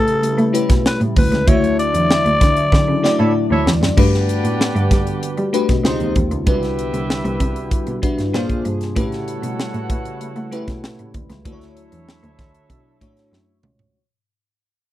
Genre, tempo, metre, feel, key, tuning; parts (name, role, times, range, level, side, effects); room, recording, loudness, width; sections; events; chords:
polished 1980s jazz-funk pop; 96 BPM; 4/4; straight; D major; A4 = 440 Hz
breathy alto saxophone; melody; 0.0-3.6 s; A4 to D5; -20 LUFS; left 1 dB
bell-like FM electric piano; accompaniment; 0.0-14.0 s; G3 to E5; -22 LUFS; left 3 dB; tremolo, lush chorus
hollow soft pad; sustained chords; 0.0-13.9 s; C3 to F#5; -28 LUFS; equal; chorus
muted cello; bass; 0.0-13.9 s; C2 to A3; -21 LUFS; equal
crisp fusion drum kit; drums; 0.1-13.9 s; crash cymbal, hi-hat, kick drum, snare drum, toms; -18 LUFS; equal
mellow horn section; second line; 3.2-13.6 s; D4 to F#5; -27 LUFS; right 2 dB
little or no reverb; dry, close 1970s-style studio recording; -15 LUFS; side -14 dB against mid
0.0-4.0 A section; 4.0-13.9 B section
band accent 1.5-4.0; drum fill 2.7-4.0, 13.3-13.9; fade-out 4.0-13.9
0.0 A7; 1.5 Dmaj9; 4.0 Gmaj7; 5.8 C#maj9#11; 6.5 Cmaj9#11; 8.3 Bb9; 9.0 A7; 11.5 Dmaj9